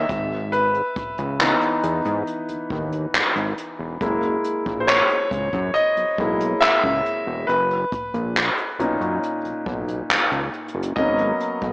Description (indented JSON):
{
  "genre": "contemporary R&B",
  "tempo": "69 BPM",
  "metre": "4/4",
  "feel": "straight",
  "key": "unclear",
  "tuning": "A4 = 440 Hz",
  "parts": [
    { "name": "clear grand piano", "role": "accompaniment", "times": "0.0-11.7 s", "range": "A#2 to E5", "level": "-22 LUFS", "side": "equal", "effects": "none" },
    { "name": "fat analog bass", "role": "bass", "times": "0.0-11.7 s", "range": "E1 to G#2", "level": "-26 LUFS", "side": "equal", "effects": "none" },
    { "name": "jazz brush drum kit", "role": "drums", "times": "0.1-11.7 s", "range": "handclaps, hi-hat, kick drum", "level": "-23 LUFS", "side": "equal", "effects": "none" }
  ],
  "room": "light reverb, small room reverb",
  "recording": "AM radio sound",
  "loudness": "-19 LUFS",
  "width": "side -25 dB against mid",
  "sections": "0.0-11.7 A section",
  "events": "grand piano solo 0.0-11.7",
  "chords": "0.1 C#m9/G#; 4.0 F#7; 7.5 Bmaj9/F#; 11.0 G#m11"
}